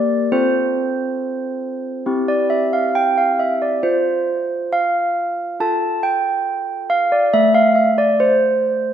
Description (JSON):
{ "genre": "classical, tune for handbells", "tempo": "69 BPM", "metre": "4/4", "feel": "straight", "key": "F major", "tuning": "A4 = 439 Hz", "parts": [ { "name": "handbells", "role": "solo", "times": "0.0-8.9 s", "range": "A3 to A5", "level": "-16 LUFS", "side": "right 1 dB", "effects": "none" } ], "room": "moderate concert hall reverb, RT60 1.9 s", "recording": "none", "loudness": "-16 LUFS", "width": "side -9 dB against mid", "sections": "0.0-8.9 A section", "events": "none", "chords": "0.3 F/C; 2.1 C; 3.8 F; 7.3 Am" }